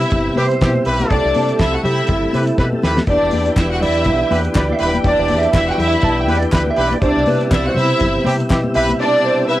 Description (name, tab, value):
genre	disco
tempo	122 BPM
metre	4/4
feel	swing 56% on 16ths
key	unclear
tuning	A4 = 440 Hz
part	rich studio string section	second line	0.0-9.6 s	D4 to F#5	-18 LUFS	left 1 dB	cassette tape
part	tonewheel organ	sustained chords	0.0-9.6 s	B2 to G4	-21 LUFS	equal	fast rotary speaker, cassette tape
part	fingered electric bass with an envelope filter	bass	0.0-8.9 s	Eb1 to C3	-21 LUFS	equal	none
part	damped 70s drum kit	drums	0.0-9.0 s	handclaps, hi-hat, kick drum, snare drum	-20 LUFS	equal	cassette tape
part	congas	percussion	0.1-9.0 s	none	-26 LUFS	left 3 dB	none
part	electric guitar at the edge of break-up	accompaniment	0.4-9.6 s	E4 to A5	-20 LUFS	right 4 dB	analog chorus, cassette tape, plate reverb
part	clear horn section	stabs	0.4-8.9 s	C4 to B4	-22 LUFS	equal	cassette tape
part	group handclap	percussion	3.6-8.6 s	none	-30 LUFS	left 2 dB	none
room	moderate studio reverb, RT60 0.6 s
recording	home recording on cassette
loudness	-13 LUFS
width	side -15 dB against mid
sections	0.0-9.6 A section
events	clean electric guitar solo 0.0-9.6; drum fill 2.6-3.1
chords	0.0 Cmaj7; 3.1 Em7; 7.0 Cmaj7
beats	0.12 0.61 | 1.10 1.60 2.09 2.58 | 3.08 3.57 4.06 4.56 | 5.05 5.54 6.04 6.53 | 7.02 7.51 8.01 8.50 | 8.99 9.49